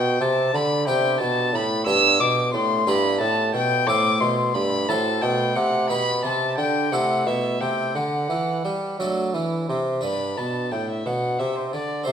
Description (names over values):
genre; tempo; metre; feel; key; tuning
classical, baroque-style sonata movement with continuo; 59 BPM (dotted quarters); 6/8; straight; G major; A4 = 439 Hz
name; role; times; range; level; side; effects
dark violin; melody; 0.0-12.1 s; C5 to E6; -23 LUFS; left 2 dB; none
harpsichord; accompaniment; 0.0-12.1 s; G2 to C5; -27 LUFS; right 1 dB; none
warm bassoon; bass; 0.0-12.1 s; G2 to G3; -24 LUFS; right 2 dB; none
room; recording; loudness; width
wet recital hall reverb, RT60 1.3 s; none; -20 LUFS; side -8 dB against mid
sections
0.0-10.0 A section; 10.0-12.1 A section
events
none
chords
0.0 G/B; 1.9 G; 2.9 Em/G; 3.9 Am; 4.9 F#dim/A; 5.9 G/B; 6.9 Am; 8.0 D; 10.0 G